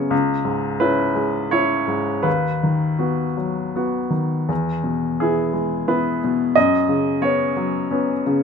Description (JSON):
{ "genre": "neoclassical minimalist piano", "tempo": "79-90 BPM", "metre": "3/4", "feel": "rubato", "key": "B major", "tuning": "A4 = 442 Hz", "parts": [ { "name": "clear baby grand piano", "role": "solo", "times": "0.0-8.4 s", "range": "C#2 to D#5", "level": "-18 LUFS", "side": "left 1 dB", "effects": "none" } ], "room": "light reverb", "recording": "minimal, uncompressed stereo recording", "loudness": "-18 LUFS", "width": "side -6 dB against mid", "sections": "0.0-8.4 A section", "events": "none", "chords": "0.1 C#m7; 2.3 B/D#; 4.5 E; 6.6 F#sus4", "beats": "| 0.12 0.81 1.52 | 2.26 3.01 3.77 | 4.50 5.20 5.88 | 6.56 7.24 7.91" }